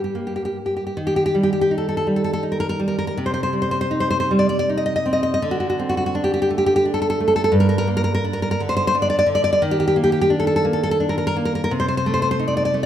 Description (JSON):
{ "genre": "romantic piece for solo classical guitar", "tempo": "71-91 BPM", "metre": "3/4", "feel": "rubato", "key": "unclear", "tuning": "A4 = 440 Hz", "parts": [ { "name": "nylon-string guitar", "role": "solo", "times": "0.0-12.9 s", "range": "G2 to Eb5", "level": "-18 LUFS", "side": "equal", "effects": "none" } ], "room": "wet recital hall reverb, RT60 1.6 s", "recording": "none", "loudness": "-18 LUFS", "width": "side -10 dB against mid", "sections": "1.0-12.9 A section", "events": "none", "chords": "0.0 Gm; 1.0 Eb; 3.2 Cm; 5.4 D5; 7.5 Gm; 9.6 Eb5; 11.7 Adim/C" }